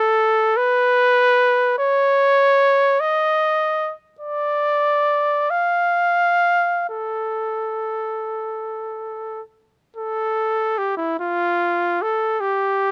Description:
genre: classical, free, expressive piece for unaccompanied trumpet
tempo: 31-53 BPM (dotted quarters)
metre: 6/8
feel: rubato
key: unclear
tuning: A4 = 441 Hz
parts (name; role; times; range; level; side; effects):
- warm trumpet; solo; 0.0-12.9 s; E4 to F5; -20 LUFS; equal; none
room: little or no reverb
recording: close, detailed microphones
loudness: -19 LUFS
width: mono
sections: 0.0-10.0 A section; 10.0-12.9 B section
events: none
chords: none

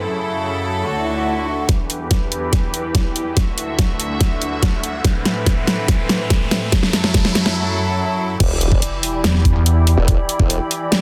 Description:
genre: heavy wobble dubstep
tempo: 143 BPM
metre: 4/4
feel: half-time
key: E minor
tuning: A4 = 439 Hz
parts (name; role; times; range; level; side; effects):
- clear studio string section; sustained chords; 0.0-11.0 s; D2 to E5; -26 LUFS; equal; sidechain pumping, low-pass filter
- warbly tape-like pad; texture; 0.0-11.0 s; D4 to B5; -31 LUFS; equal; chorus, built-in reverb, sidechain pumping
- swell, riser and sub drop; sound effects; 1.0-10.1 s; none; -31 LUFS; equal; none
- dubstep drum kit; drums; 1.7-11.0 s; crash cymbal, hi-hat, snare drum; -22 LUFS; equal; low-pass filter on snare, low-pass filter on hats, low-pass filter on cymbals
- electronic kick drum; drums; 1.7-10.5 s; none; -19 LUFS; equal; none
- formant-sweep wobble bass; bass; 8.4-10.6 s; E1; -21 LUFS; equal; chorus, overdrive
- pulsing pluck wobble bass; bass; 9.2-10.0 s; E2; -16 LUFS; equal; chorus, overdrive
room: light reverb, digital ambience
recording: dense, heavily limited modern master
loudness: -18 LUFS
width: mono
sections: 0.0-1.7 A section; 1.7-8.4 B section; 8.4-11.0 C section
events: swell 1.0-1.7; build-up 1.7-8.4; drum fill 1.7-7.6; filter sweep on string section 1.7-8.4; riser 3.6-7.6; break 7.6-8.4; drop 8.4-11.0; impact 8.4-10.1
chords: 0.0 F#m7; 0.8 D; 1.7 Em; 3.4 Dadd9; 5.0 Amadd9; 6.7 F#m7; 8.4 Em7

